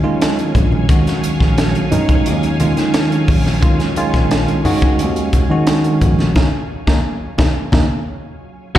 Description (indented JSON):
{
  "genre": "electric jazz fusion",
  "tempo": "88 BPM",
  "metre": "4/4",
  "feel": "straight",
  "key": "Eb minor",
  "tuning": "A4 = 438 Hz",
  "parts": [
    { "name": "bell-like tine electric piano", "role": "accompaniment", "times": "0.0-8.8 s", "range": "Eb3 to Gb4", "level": "-19 LUFS", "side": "right 1 dB", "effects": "medium stereo tremolo, slapback echo" },
    { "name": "string machine, cellos", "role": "sustained chords", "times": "0.0-8.8 s", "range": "Gb3 to Ab5", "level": "-25 LUFS", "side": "equal", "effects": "ensemble chorus" },
    { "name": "fingered electric bass", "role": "bass", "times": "0.0-8.8 s", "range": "Bb1 to Eb3", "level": "-17 LUFS", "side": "equal", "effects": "none" },
    { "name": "crisp fusion drum kit", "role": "drums", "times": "0.2-8.8 s", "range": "hi-hat, kick drum, snare drum", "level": "-18 LUFS", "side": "equal", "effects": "none" },
    { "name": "congas", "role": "percussion", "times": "0.5-8.8 s", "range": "none", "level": "-21 LUFS", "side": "left 1 dB", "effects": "none" }
  ],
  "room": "light reverb",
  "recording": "live gig heard through the venue's PA, recital hall reverb",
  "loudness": "-13 LUFS",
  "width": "side -12 dB against mid",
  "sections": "0.0-8.8 A section",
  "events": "band accent 6.4-8.8; tine electric piano fill 7.7-8.8; drum fill 8.4-8.8",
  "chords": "0.0 Ebm11"
}